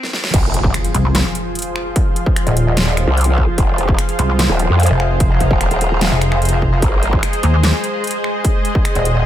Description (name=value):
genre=heavy wobble dubstep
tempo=148 BPM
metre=4/4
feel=half-time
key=F minor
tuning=A4 = 440 Hz
part: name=dubstep drum kit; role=drums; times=0.0-9.1 s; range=crash cymbal, finger snaps, hi-hat, snare drum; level=-22 LUFS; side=equal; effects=none
part: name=lush unison pad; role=sustained chords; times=0.3-9.3 s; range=F3 to Eb5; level=-22 LUFS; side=equal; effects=chorus, vintage 12-bit sampler grit, sidechain pumping
part: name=growl bass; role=bass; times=0.3-7.2 s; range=Eb1 to F2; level=-15 LUFS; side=equal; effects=chorus, overdrive
part: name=electronic kick drum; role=drums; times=0.3-8.8 s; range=none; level=-16 LUFS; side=equal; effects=distortion
part: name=impact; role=sound effects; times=0.3-2.0 s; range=none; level=-23 LUFS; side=equal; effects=none
part: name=granular cloud pad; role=texture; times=1.4-9.3 s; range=Ab4 to C6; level=-28 LUFS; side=left 1 dB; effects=built-in reverb, sidechain pumping
part: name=pulsing pluck wobble bass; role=bass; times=0.9-9.3 s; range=Eb1 to Eb2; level=-14 LUFS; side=equal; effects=chorus, overdrive
room=digital ambience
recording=high-pass filter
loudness=-13 LUFS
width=side -12 dB against mid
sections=0.3-9.3 A section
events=break 0.0-0.3; drum fill 0.0-0.3; drop 0.3-9.3; impact 0.3-2.0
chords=0.3 Fm